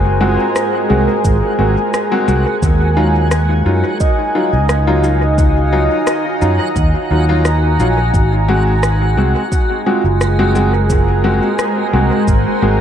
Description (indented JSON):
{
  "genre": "ambient dub",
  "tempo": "87 BPM",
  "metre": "4/4",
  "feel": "straight",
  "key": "unclear",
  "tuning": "A4 = 440 Hz",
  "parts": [
    { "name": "granular cloud pad", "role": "sustained chords", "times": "0.0-12.8 s", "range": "Ab3 to Bb5", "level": "-18 LUFS", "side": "right 1 dB", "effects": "built-in reverb" },
    { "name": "fingered electric bass", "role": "bass", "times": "0.0-12.8 s", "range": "Gb1 to Gb2", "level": "-14 LUFS", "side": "equal", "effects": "none" },
    { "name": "backwards swelling texture", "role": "texture", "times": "0.0-12.8 s", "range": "Gb4", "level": "-25 LUFS", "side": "equal", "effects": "built-in reverb" },
    { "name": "handpan", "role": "arpeggios", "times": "0.2-12.8 s", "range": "Eb4 to Eb5", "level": "-24 LUFS", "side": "right 6 dB", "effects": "dub echo" },
    { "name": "clear upright piano", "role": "stabs", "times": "0.2-12.8 s", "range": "Gb3 to Gb4", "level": "-18 LUFS", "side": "left 2 dB", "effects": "dub echo" },
    { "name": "electronic rim click and shaker", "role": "drums", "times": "0.6-12.4 s", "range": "none", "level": "-25 LUFS", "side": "equal", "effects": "studio reverb, dub echo" },
    { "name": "electronic kick drum", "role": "drums", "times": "1.2-12.4 s", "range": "none", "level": "-16 LUFS", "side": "equal", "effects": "studio reverb" }
  ],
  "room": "moderate spring reverb, RT60 2.2 s",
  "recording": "none",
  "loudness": "-12 LUFS",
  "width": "side -9 dB against mid",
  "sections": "0.0-12.8 A section",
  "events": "none",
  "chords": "0.0 Ab7; 2.6 Ebmadd9; 8.1 Ab7",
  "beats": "0.56 1.25 1.94 | 2.62 3.31 4.00 4.69 | 5.38 6.07 6.76 7.45 | 8.14 8.83 9.52 10.21 | 10.90 11.59 12.28"
}